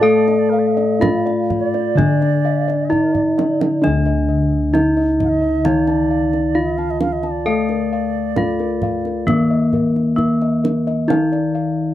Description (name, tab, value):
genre	Javanese gamelan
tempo	66 BPM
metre	4/4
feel	straight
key	D pelog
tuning	A4 = 440 Hz
part	gamelan-type bronze metallophone	melody	0.0-11.9 s	Bb3 to A4	-18 LUFS	equal	none
part	bright reedy xiao	second line	0.0-9.6 s	Bb4 to F5+39c	-26 LUFS	right 13 dB	none
part	gamelan-type bronze metallophone	accompaniment	0.0-11.9 s	D3 to Bb3	-22 LUFS	left 8 dB	none
part	gamelan-type bossed gongs	arpeggios	0.0-11.8 s	Bb4 to A5	-26 LUFS	left 5 dB	none
part	gamelan-type bronze metallophone	arpeggios	0.0-3.8 s	D5 to A5	-28 LUFS	right 5 dB	tape echo
part	gamelan-type bossed gongs	bass	0.0-11.9 s	D2 to A4	-22 LUFS	equal	none
part	kendang	percussion	0.3-11.4 s	none	-23 LUFS	right 4 dB	none
room	light reverb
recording	dry, close 1970s-style studio recording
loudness	-15 LUFS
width	side -12 dB against mid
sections	0.0-3.8 A section; 3.8-11.9 B section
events	drum fill 2.9-3.8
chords	none